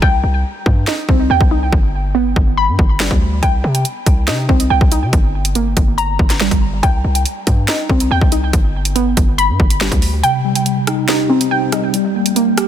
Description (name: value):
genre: hip hop, drill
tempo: 141 BPM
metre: 4/4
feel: half-time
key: C minor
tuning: A4 = 441 Hz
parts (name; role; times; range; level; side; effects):
- warbly dusty pluck; arpeggios; 0.0-12.7 s; G3 to B5; -18 LUFS; right 1 dB; chorus, phaser, tape echo
- hard-hitting 808-style bass; bass; 0.0-10.2 s; G1 to C3; -17 LUFS; equal; none
- drill drum kit; drums; 0.0-12.7 s; hi-hat, kick drum, rim click, snare drum; -15 LUFS; equal; none
- mellow tine electric piano; accompaniment; 10.2-12.7 s; C3 to G4; -17 LUFS; left 1 dB; medium stereo tremolo
room: digital ambience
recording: dense, heavily limited modern master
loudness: -12 LUFS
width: side -10 dB against mid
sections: 0.0-12.7 A section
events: break 0.0-3.4; kick muted 10.2-12.7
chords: 0.0 Cm; 1.7 G; 3.4 Cm; 5.1 Gm; 6.8 Cm; 8.5 G; 10.2 Cm; 11.9 Gm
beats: | 0.02 0.45 0.87 1.30 | 1.73 2.15 2.58 3.00 | 3.43 3.85 4.28 4.70 | 5.13 5.55 5.98 6.41 | 6.83 7.26 7.68 8.11 | 8.53 8.96 9.38 9.81 | 10.24 10.66 11.09 11.51 | 11.94 12.36